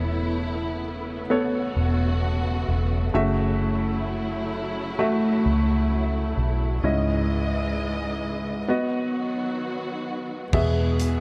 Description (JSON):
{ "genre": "pop ballad", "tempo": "65 BPM", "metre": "4/4", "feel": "straight", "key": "unclear", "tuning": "A4 = 441 Hz", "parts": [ { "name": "clear concert grand piano", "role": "accompaniment", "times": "0.0-11.2 s", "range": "G#2 to E5", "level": "-28 LUFS", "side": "equal", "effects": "none" }, { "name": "warm studio string section", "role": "sustained chords", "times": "0.0-11.2 s", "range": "C#3 to D#5", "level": "-33 LUFS", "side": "equal", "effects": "none" }, { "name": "vintage muted fingered electric bass", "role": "bass", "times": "0.0-11.2 s", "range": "E1 to E2", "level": "-28 LUFS", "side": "equal", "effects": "none" }, { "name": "modern studio drum kit", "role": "drums", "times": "10.5-11.2 s", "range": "crash cymbal, hi-hat, kick drum", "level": "-31 LUFS", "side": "equal", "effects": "none" } ], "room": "light reverb, small room ambience", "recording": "none", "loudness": "-25 LUFS", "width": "mono", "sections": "0.0-10.5 A section", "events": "break 8.7-10.5", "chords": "0.0 Aadd9/E; 3.1 F#m7; 6.8 C#madd9; 8.7 B; 10.5 E" }